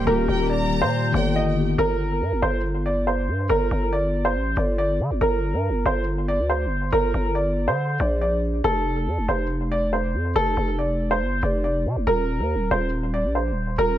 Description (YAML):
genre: hip hop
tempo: 140 BPM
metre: 4/4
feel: half-time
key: G minor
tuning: A4 = 436 Hz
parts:
  - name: warm upright piano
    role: melody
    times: 0.0-14.0 s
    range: A4 to Eb5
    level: -24 LUFS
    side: equal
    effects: digital delay
  - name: warm studio violin section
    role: second line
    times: 0.0-1.3 s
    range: G5 to Bb5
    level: -30 LUFS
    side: equal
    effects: digital delay
  - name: muted felt-like synth keys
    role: accompaniment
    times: 0.0-1.8 s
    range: Eb3 to G4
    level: -25 LUFS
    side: left 6 dB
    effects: chorus
  - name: warm analog pad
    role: sustained chords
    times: 0.0-1.8 s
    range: Eb3 to G4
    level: -34 LUFS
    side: right 1 dB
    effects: none
  - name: growling 808-style bass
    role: bass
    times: 0.0-14.0 s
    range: Eb1 to D3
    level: -23 LUFS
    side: equal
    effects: none
room: light reverb, small room ambience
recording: none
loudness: -20 LUFS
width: side -12 dB against mid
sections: 0.0-1.8 A section; 1.8-14.0 B section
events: none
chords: 0.0 Eb; 1.8 Gm; 8.6 F; 12.1 Eb5